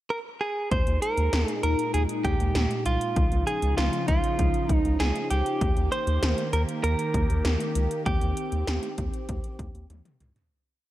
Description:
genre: synth-pop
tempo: 98 BPM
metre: 4/4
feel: straight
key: unclear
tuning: A4 = 439 Hz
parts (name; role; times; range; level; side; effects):
- direct-recorded clean electric guitar; melody; 0.1-9.9 s; F4 to C5; -29 LUFS; right 2 dB; tape echo
- phased analog pad; sustained chords; 0.7-10.5 s; Bb2 to G4; -31 LUFS; left 1 dB; phaser, chorus
- round analog bass; bass; 0.7-10.3 s; C2 to Eb2; -26 LUFS; equal; none
- 80s electronic pad drums; drums; 0.7-10.5 s; hi-hat, kick drum, snare drum, toms; -28 LUFS; equal; gated reverb on snare and toms
room: light reverb, digital ambience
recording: none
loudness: -23 LUFS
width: side -14 dB against mid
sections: 0.0-0.7 pickup bar; 0.7-10.5 verse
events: fade-out 8.1-10.5; drum fill 9.9-10.5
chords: 0.0 N.C.; 0.7 Ebsus4; 3.2 Dbadd9; 5.6 Eb

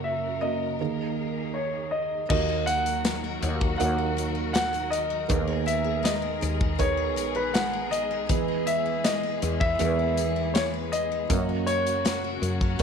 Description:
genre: pop ballad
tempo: 80 BPM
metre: 4/4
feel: straight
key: unclear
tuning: A4 = 438 Hz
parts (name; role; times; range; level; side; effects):
- warm grand piano; melody; 0.0-12.8 s; B4 to F#5; -28 LUFS; left 1 dB; slapback echo
- felt-muted upright piano; accompaniment; 0.0-12.8 s; F#1 to B4; -31 LUFS; right 10 dB; none
- warm studio string section; sustained chords; 0.0-12.8 s; C#3 to A#4; -36 LUFS; left 3 dB; none
- picked steel-string acoustic guitar; arpeggios; 2.3-12.8 s; D#3 to B4; -35 LUFS; left 13 dB; none
- woody fretless electric bass; bass; 2.3-12.8 s; A#1 to F#2; -30 LUFS; left 1 dB; ensemble chorus
- modern studio drum kit; drums; 2.3-12.8 s; crash cymbal, hi-hat, kick drum, snare drum; -28 LUFS; left 1 dB; none
room: light reverb, small room ambience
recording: 1960s-style stereo with parts hard left and right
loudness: -24 LUFS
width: side -6 dB against mid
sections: 0.0-2.3 A section; 2.3-12.8 B section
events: none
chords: 0.0 F#; 0.8 D#sus4; 2.3 D#m; 5.3 G#madd9/D#; 8.3 E; 11.3 F#

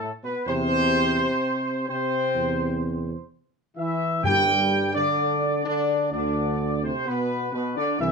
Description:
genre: classical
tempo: 64 BPM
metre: 4/4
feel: straight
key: G major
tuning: A4 = 440 Hz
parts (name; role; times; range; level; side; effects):
- dark trumpet section; melody; 0.0-8.1 s; B4 to G5; -25 LUFS; right 1 dB; none
- mellow French horn section; sustained chords; 0.0-8.1 s; B3 to G4; -28 LUFS; left 3 dB; none
- warm trombone section; sustained chords; 0.0-8.1 s; A2 to G3; -30 LUFS; right 1 dB; none
- warm tuba; bass; 0.5-8.1 s; C2 to G2; -28 LUFS; right 3 dB; none
- timpani; percussion; 4.2-5.6 s; G2; -32 LUFS; left 1 dB; none
room: moderate studio reverb, RT60 0.6 s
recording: minimal, uncompressed stereo recording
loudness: -22 LUFS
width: side -4 dB against mid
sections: 0.0-8.1 A section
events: none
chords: 0.5 C/E; 4.2 G5

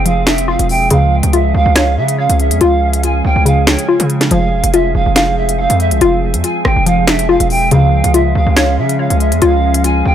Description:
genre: hip hop, drill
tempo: 141 BPM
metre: 4/4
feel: half-time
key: unclear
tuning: A4 = 440 Hz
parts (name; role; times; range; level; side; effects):
- polished pan flute; second line; 0.0-10.1 s; Db5 to Ab5; -16 LUFS; right 3 dB; tape echo
- glassy FM pad; sustained chords; 0.0-10.1 s; F3 to Ab4; -20 LUFS; equal; ensemble chorus, built-in reverb
- hollow square pluck; arpeggios; 0.0-10.1 s; Db3 to F5; -15 LUFS; left 3 dB; chorus, tape echo
- distorted 808-style bass; bass; 0.0-10.1 s; E1 to Db3; -14 LUFS; equal; distortion
- drill drum kit; drums; 0.1-9.9 s; finger snaps, hi-hat, rim click, snare drum; -16 LUFS; equal; none
room: light reverb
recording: none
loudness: -10 LUFS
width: side -10 dB against mid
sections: 0.0-10.1 A section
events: none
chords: 0.0 Fm; 0.9 Db; 4.3 Fm; 7.7 Db

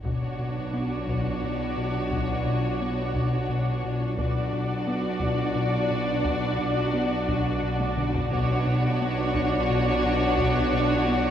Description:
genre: cinematic, suspense film score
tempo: 87 BPM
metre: 3/4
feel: straight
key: B minor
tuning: A4 = 441 Hz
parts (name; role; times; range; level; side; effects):
- rich studio violin section; melody; 0.0-11.3 s; C#5 to D5; -33 LUFS; left 4 dB; none
- warm studio viola section; accompaniment; 0.0-11.3 s; D4; -30 LUFS; right 3 dB; none
- rubbery square bass; riff; 0.0-11.3 s; B2 to B3; -30 LUFS; left 3 dB; none
- dark studio double bass section; bass; 0.0-11.3 s; B1; -34 LUFS; right 2 dB; none
- metallic inharmonic drone; drone; 0.0-11.3 s; B1; -34 LUFS; left 1 dB; chorus, built-in reverb
- taiko ensemble; drums; 0.0-11.0 s; none; -35 LUFS; equal; none
- warm studio violin section; second line; 0.1-11.3 s; F#4; -31 LUFS; left 2 dB; none
- dark studio cello section; bass; 0.1-11.3 s; B2; -32 LUFS; right 2 dB; none
room: moderate scoring stage reverb, RT60 2.0 s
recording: worn, warbling old tape, cassette tape, warbly pitch drift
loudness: -23 LUFS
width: side -9 dB against mid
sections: 0.0-11.3 A section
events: drum fill 7.8-8.3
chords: 0.0 Bmadd9

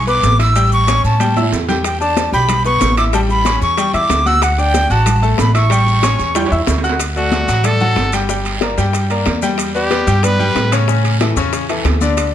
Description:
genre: latin, salsa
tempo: 186 BPM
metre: 4/4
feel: straight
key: D major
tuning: A4 = 440 Hz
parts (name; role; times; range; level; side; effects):
- breathy bright concert flute; melody; 0.0-6.8 s; F#5 to E6; -16 LUFS; equal; none
- upright bass; bass; 0.0-12.3 s; G1 to A2; -17 LUFS; right 1 dB; none
- bright grand piano; accompaniment; 0.1-12.3 s; C#3 to G6; -19 LUFS; left 3 dB; none
- congas; percussion; 0.1-12.3 s; none; -24 LUFS; left 2 dB; none
- maracas; percussion; 0.1-12.3 s; none; -30 LUFS; left 9 dB; none
- guiro; percussion; 0.2-12.3 s; none; -28 LUFS; right 5 dB; none
- timbales; percussion; 0.2-12.3 s; none; -24 LUFS; right 7 dB; none
- bongos; percussion; 1.8-12.3 s; none; -26 LUFS; left 10 dB; none
- brilliant trumpet; melody; 7.2-10.7 s; F#4 to B4; -18 LUFS; equal; none
room: light reverb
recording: close, detailed microphones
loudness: -12 LUFS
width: side -10 dB against mid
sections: 0.0-7.0 A section; 7.0-12.3 B section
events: drum fill 1.2-1.8, 6.4-7.0; trumpet solo 7.0-12.3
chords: 0.0 E7(no3); 0.6 A7; 1.8 Em7; 3.1 A7; 4.4 Dadd9; 5.7 A7; 7.0 D; 8.3 Gm; 9.6 Em7; 10.9 A

